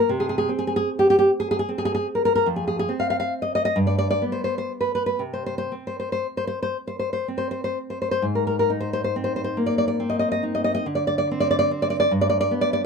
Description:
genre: romantic piece for solo classical guitar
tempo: 38-52 BPM (dotted quarters)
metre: 6/8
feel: rubato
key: unclear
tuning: A4 = 440 Hz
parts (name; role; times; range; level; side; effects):
- nylon-string guitar; solo; 0.0-12.9 s; F2 to F5; -21 LUFS; equal; none
room: light reverb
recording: minimal, uncompressed stereo recording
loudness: -21 LUFS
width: side -5 dB against mid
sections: 0.0-8.3 A section; 8.3-12.9 B section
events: none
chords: 0.1 N.C.; 2.5 F5; 3.8 G; 5.2 N.C.; 8.3 Ab; 10.9 Csus2/D; 12.1 G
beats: | 0.10 1.31 | 2.49 3.79 | 5.23 6.78 | 8.26 9.59 | 10.86 12.13

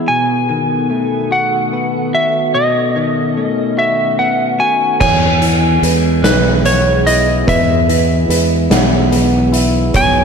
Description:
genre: post-rock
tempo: 49 BPM (dotted quarters)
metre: 6/8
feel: straight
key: E major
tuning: A4 = 440 Hz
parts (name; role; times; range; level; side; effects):
- glassy FM pad; sustained chords; 0.0-10.2 s; D#3 to A4; -23 LUFS; right 1 dB; ensemble chorus, built-in reverb
- clean electric guitar; arpeggios; 0.0-10.2 s; E2 to F#4; -18 LUFS; left 3 dB; tape echo
- clean lap steel guitar; melody; 0.1-10.2 s; B4 to G#5; -15 LUFS; equal; slapback echo, tape echo
- felt-muted upright piano; arpeggios; 5.0-10.2 s; B4 to F#5; -22 LUFS; right 6 dB; slapback echo, tape echo
- modern bright fingered electric bass; bass; 5.0-10.2 s; B1 to E2; -16 LUFS; right 1 dB; none
- oversized low-tuned drum kit; drums; 5.0-10.1 s; crash cymbal, hi-hat, kick drum, snare drum; -16 LUFS; equal; none
room: wet lush hall reverb, RT60 2.8 s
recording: big arena sound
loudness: -11 LUFS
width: side -6 dB against mid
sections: 0.0-5.0 A section; 5.0-10.2 A section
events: none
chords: 0.1 B7; 5.0 E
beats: | 0.09 1.31 | 2.54 3.78 | 5.01 6.24 | 7.47 8.71 | 9.94

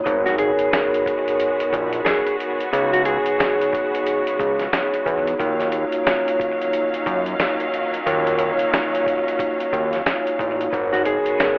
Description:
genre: hip hop, boom-bap hip-hop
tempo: 90 BPM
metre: 4/4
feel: swing 60% on 16ths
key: Eb minor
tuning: A4 = 440 Hz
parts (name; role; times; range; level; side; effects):
- vibraphone with soft mallets; accompaniment; 0.0-11.6 s; Bb3 to Db5; -21 LUFS; equal; cassette tape, high-pass filter, low-pass filter, analog delay
- warm studio string section; sustained chords; 0.1-11.6 s; Db3 to F5; -26 LUFS; equal; high-pass filter, low-pass filter
- fat analog bass; bass; 0.1-11.2 s; Ab1 to Gb2; -23 LUFS; equal; none
- boom bap sampler-style drum kit; drums; 0.1-11.6 s; hi-hat, kick drum, snare drum; -25 LUFS; equal; none
- mellow electric guitar; melody; 0.3-4.2, 10.9-11.6 s; Gb4 to Ab4; -23 LUFS; equal; wide subtle chorus, high-pass filter, low-pass filter, analog delay
- finger snaps; percussion; 0.7-11.6 s; none; -34 LUFS; equal; none
room: moderate spring reverb, RT60 2.5 s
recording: echo-heavy mix, vinyl crackle, telephone sound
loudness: -18 LUFS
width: side -31 dB against mid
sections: 0.1-11.6 A section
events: none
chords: 0.1 Abm11; 2.7 Db7sus4; 5.4 Ebm9; 10.7 Abm11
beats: | 0.06 0.73 1.39 2.06 | 2.73 3.39 4.06 4.73 | 5.39 6.06 6.73 7.39 | 8.06 8.73 9.39 10.06 | 10.73 11.39

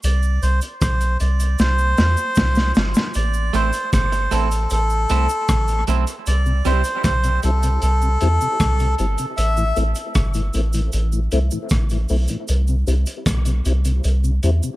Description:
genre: dub reggae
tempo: 77 BPM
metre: 4/4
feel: straight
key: A minor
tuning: A4 = 439 Hz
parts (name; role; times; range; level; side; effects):
- melodica; melody; 0.0-9.8 s; A4 to E5; -23 LUFS; equal; dub echo
- soft dub sub bass; bass; 0.0-14.6 s; G1 to E2; -18 LUFS; equal; none
- crunchy breakbeat drum kit; drums; 0.0-14.6 s; hi-hat, kick drum, rim click, snare drum; -22 LUFS; equal; none
- cabasa; percussion; 0.0-14.8 s; none; -35 LUFS; right 5 dB; none
- electric guitar at the edge of break-up; accompaniment; 3.5-6.8 s; G3 to E4; -27 LUFS; right 8 dB; dub echo
- mellow tonewheel organ; accompaniment; 6.5-14.7 s; A2 to E4; -27 LUFS; left 3 dB; chorus vibrato, slow rotary speaker, dub echo
room: light reverb, small room ambience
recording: none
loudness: -17 LUFS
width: side -17 dB against mid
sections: 0.0-14.8 A section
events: break 0.0-6.3; drum fill 1.6-3.2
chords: 0.0 N.C.; 3.2 Am; 6.3 C; 9.4 Am; 12.5 C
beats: | 0.04 0.82 1.59 2.37 | 3.15 3.93 4.71 5.48 | 6.26 7.04 7.82 8.60 | 9.37 10.15 10.93 11.71 | 12.49 13.26 14.04

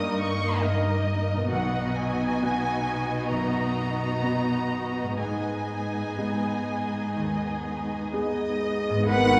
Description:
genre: cinematic, emotional film score for orchestra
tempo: 59-69 BPM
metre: 4/4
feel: rubato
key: G# minor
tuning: A4 = 440 Hz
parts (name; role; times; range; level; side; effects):
- muted studio violin section; melody; 0.0-9.4 s; D#4 to D#6; -35 LUFS; equal; none
- muted chamber violin section; second line; 0.0-9.4 s; F#4 to F#5; -34 LUFS; equal; none
- bright concert grand piano; accompaniment; 0.0-9.4 s; B1 to A#4; -35 LUFS; equal; none
- muted studio viola section; accompaniment; 0.0-9.4 s; D#3 to D#4; -37 LUFS; equal; none
- concert harp; arpeggios; 0.0-9.4 s; G2 to A#4; -37 LUFS; equal; none
- muted studio cello section; bass; 0.0-9.4 s; G2 to B4; -31 LUFS; equal; none
- mellow hollow concert flute; second line; 8.1-9.4 s; G#4 to A#4; -30 LUFS; equal; none
- mellow French horn section; sustained chords; 9.1-9.4 s; B3 to D#4; -32 LUFS; equal; none
- muted studio double bass section; bass; 9.1-9.4 s; G#1; -32 LUFS; equal; none
room: wet scoring stage reverb, RT60 1.5 s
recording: heard from further back in the room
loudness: -27 LUFS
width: mono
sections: 0.0-9.1 A section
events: none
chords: 0.0 D#/G; 1.5 B; 5.2 G#m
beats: 0.63 | 1.51 2.42 3.31 4.23 | 5.20 6.19 7.16 8.12 | 9.06

